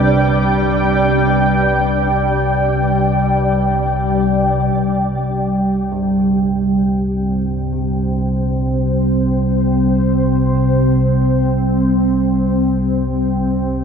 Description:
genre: dark ambient drone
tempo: free time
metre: none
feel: none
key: unclear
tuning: A4 = 438 Hz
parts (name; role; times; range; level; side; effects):
- deep dark ambient pad; sustained chords; 0.0-13.8 s; C3 to G5; -15 LUFS; equal; chorus, built-in reverb
- deep rumbling drone; drone; 0.0-13.8 s; C2 to C3; -19 LUFS; right 1 dB; built-in reverb
- flickering grainy texture; texture; 0.0-4.8 s; D5; -25 LUFS; right 1 dB; built-in reverb, analog chorus
- carillon bells; arpeggios; 5.9-13.1 s; G2; -35 LUFS; right 1 dB; none
room: wet lush hall reverb, RT60 3.0 s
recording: dreamy mix soaked in reverb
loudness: -14 LUFS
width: side -6 dB against mid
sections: 0.0-4.7 A section; 4.7-13.8 B section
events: filter sweep on synth drone 4.7-13.8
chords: 0.0 G/C; 4.7 C5

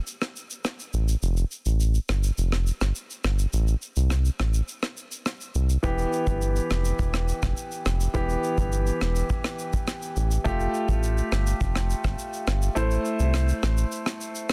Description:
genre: dancehall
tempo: 104 BPM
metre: 4/4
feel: straight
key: E phrygian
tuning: A4 = 440 Hz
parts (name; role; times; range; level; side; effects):
- deep reggae drum kit; drums; 0.1-14.5 s; kick drum, rim click, shaker; -32 LUFS; equal; soft clipping on snare
- round analog bass; bass; 0.9-13.9 s; E1 to C2; -26 LUFS; equal; none
- clear concert grand piano; accompaniment; 5.8-14.5 s; E3 to C5; -31 LUFS; equal; none
room: studio reverb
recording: dense, heavily limited modern master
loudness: -26 LUFS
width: mono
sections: 0.0-14.5 A section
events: break 0.0-5.8; kick muted 12.8-14.5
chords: 0.0 N.C.; 1.2 Fadd9; 3.5 Am; 5.8 Em; 10.5 Fadd9; 12.8 Am

